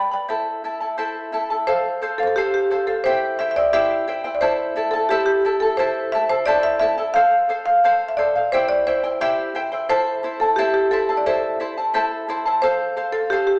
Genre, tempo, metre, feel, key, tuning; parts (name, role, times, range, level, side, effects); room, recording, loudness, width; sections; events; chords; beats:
andean folk; 88 BPM; 2/4; straight; A minor; A4 = 440 Hz
marimba with medium hard mallets; melody; 0.0-13.6 s; G4 to B5; -19 LUFS; equal
charango; accompaniment; 0.0-13.6 s; E4 to B5; -22 LUFS; equal
wet recital hall reverb, RT60 1.4 s; small speaker sound; -17 LUFS; side -26 dB against mid
0.0-1.7 A section; 1.7-12.6 B section
0.3 Am; 1.7 F; 3.0 C; 4.4 Am; 7.2 F; 8.5 C; 9.9 Am; 12.6 F
| 0.29 0.98 | 1.67 2.35 | 3.04 3.73 | 4.41 5.10 | 5.78 6.47 | 7.15 7.84 | 8.52 9.21 | 9.89 10.57 | 11.26 11.94 | 12.62 13.31